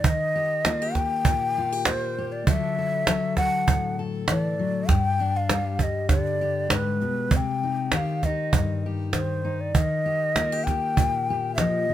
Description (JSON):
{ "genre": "acoustic folk duo or small band", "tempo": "99 BPM", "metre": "4/4", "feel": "straight", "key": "unclear", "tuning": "A4 = 440 Hz", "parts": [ { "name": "breathy hollow shakuhachi", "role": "melody", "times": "0.0-11.9 s", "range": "B4 to G5", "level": "-26 LUFS", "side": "left 1 dB", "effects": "none" }, { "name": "fingerpicked steel-string acoustic guitar", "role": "accompaniment", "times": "0.0-11.9 s", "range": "G2 to A4", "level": "-27 LUFS", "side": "left 3 dB", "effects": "none" }, { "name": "cajon", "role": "percussion", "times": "0.0-11.7 s", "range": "none", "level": "-22 LUFS", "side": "right 3 dB", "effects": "none" } ], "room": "light reverb", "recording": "close, detailed microphones", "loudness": "-22 LUFS", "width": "side -11 dB against mid", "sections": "0.0-11.9 A section", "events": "none", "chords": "0.0 Eb; 2.5 D; 4.9 G; 7.3 Cm; 9.7 Eb" }